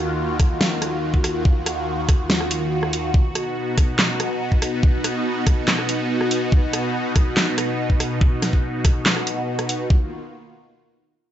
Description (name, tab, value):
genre	heavy wobble dubstep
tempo	142 BPM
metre	4/4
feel	half-time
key	Eb minor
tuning	A4 = 439 Hz
part	supersaw pad	sustained chords	0.0-10.1 s	Eb2 to Gb4	-23 LUFS	equal	phaser, sidechain pumping
part	dubstep drum kit	drums	0.4-9.8 s	handclaps, hi-hat, rim click, snare drum	-21 LUFS	equal	studio reverb
part	electronic kick drum	drums	0.4-10.0 s	none	-17 LUFS	equal	studio reverb
room	light reverb, digital ambience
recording	nothing above 7.8 kHz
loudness	-18 LUFS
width	side -11 dB against mid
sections	0.0-9.9 A section; 9.9-11.3 B section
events	none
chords	0.0 Ebmadd9; 3.1 B; 9.9 Ebmadd9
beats	0.18 0.61 1.03 | 1.45 1.87 2.30 2.72 | 3.14 3.56 3.99 4.41 | 4.83 5.25 5.68 6.10 | 6.52 6.95 7.37 7.79 | 8.21 8.63 9.06 9.48 | 9.90